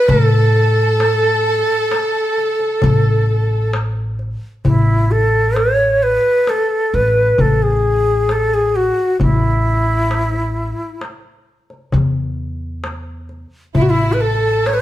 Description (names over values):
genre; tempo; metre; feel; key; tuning
Arabic maqam ensemble; 132 BPM (eighths); 10/8; straight; A maqam ajam; A4 = 438 Hz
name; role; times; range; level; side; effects
breathy bright ney; melody; 0.0-14.8 s; E4 to C#5; -16 LUFS; equal; none
warm studio violin section; second line; 0.0-3.7, 13.8-14.8 s; E4 to C#5; -24 LUFS; left 1 dB; none
upright bass; bass; 0.1-14.8 s; A1 to A2; -18 LUFS; equal; none
darbuka; percussion; 0.1-14.8 s; none; -19 LUFS; left 2 dB; none
room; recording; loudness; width
moderate large studio reverb, RT60 1.2 s; band playing live in one room; -13 LUFS; side -13 dB against mid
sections
0.0-4.7 A section; 4.7-14.8 B section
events
none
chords
none